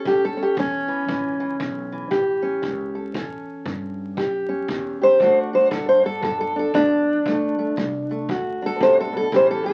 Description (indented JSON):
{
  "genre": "acoustic country blues, solo or duo",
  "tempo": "117 BPM",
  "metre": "4/4",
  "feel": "swing 61% on 8ths",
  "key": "unclear",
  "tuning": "A4 = 440 Hz",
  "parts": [
    { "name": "fingerpicked steel-string acoustic guitar", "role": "melody", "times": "0.0-9.7 s", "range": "E2 to C5", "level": "-22 LUFS", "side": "equal", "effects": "none" },
    { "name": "upright bass", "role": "bass", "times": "0.1-9.7 s", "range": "G1 to G2", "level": "-39 LUFS", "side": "equal", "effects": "none" },
    { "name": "kick drum", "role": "drums", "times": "0.1-9.5 s", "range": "none", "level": "-36 LUFS", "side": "equal", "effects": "none" }
  ],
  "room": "moderate studio reverb, RT60 0.6 s",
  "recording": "very old 78 rpm record, vinyl crackle",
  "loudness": "-21 LUFS",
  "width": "mono",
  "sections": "0.0-9.7 A section",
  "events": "steel-string acoustic guitar solo 0.0-9.7",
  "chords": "0.0 A7; 5.2 D7",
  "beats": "0.06 0.58 | 1.09 1.61 2.12 2.63 | 3.15 3.66 4.18 4.69 | 5.21 5.72 6.23 6.75 | 7.26 7.78 8.29 8.81 | 9.32"
}